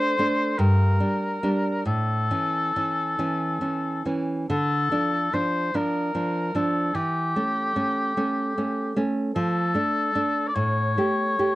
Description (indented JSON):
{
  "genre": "romantic duo for oboe and classical guitar",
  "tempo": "45-52 BPM (dotted quarters)",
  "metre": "6/8",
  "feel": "rubato",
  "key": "D minor",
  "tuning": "A4 = 437 Hz",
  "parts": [
    { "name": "warm oboe", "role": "melody", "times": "0.0-11.6 s", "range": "G4 to D5", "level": "-25 LUFS", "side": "left 2 dB", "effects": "cassette tape" },
    { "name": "nylon-string guitar", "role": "accompaniment", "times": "0.0-11.6 s", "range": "G2 to G4", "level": "-24 LUFS", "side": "right 1 dB", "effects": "cassette tape" }
  ],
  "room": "light reverb",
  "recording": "home recording on cassette",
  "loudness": "-22 LUFS",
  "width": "side -18 dB against mid",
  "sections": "0.0-11.6 A section",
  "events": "none",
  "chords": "0.0 D5; 0.6 Gm; 1.9 A; 4.5 Dm; 6.9 A7/E; 9.3 Dm/F; 10.5 A7"
}